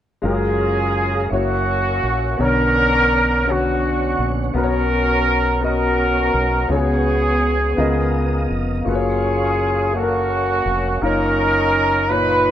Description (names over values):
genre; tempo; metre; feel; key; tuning
gospel; 56 BPM (dotted quarters); 6/8; straight; F# major; A4 = 441 Hz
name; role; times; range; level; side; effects
clear upright piano; accompaniment; 0.2-12.5 s; A#2 to E#5; -23 LUFS; left 3 dB; none
mellow tonewheel organ; sustained chords; 0.2-12.5 s; B3 to D#6; -29 LUFS; right 3 dB; fast rotary speaker, chorus vibrato
fingered electric bass; bass; 0.2-12.5 s; E#1 to C#2; -23 LUFS; equal; none
warm horn section; melody; 0.3-12.5 s; A#3 to B4; -18 LUFS; right 1 dB; none
room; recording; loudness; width
small room ambience; rough home demo mix; -16 LUFS; side -10 dB against mid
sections
0.2-12.5 A section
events
none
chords
0.2 F#maj9; 1.3 F#7; 2.4 Bmadd9; 4.5 Bmaj9; 6.7 C#7sus4; 7.8 C#13; 8.9 F#maj7; 11.0 Bmaj9#11/F#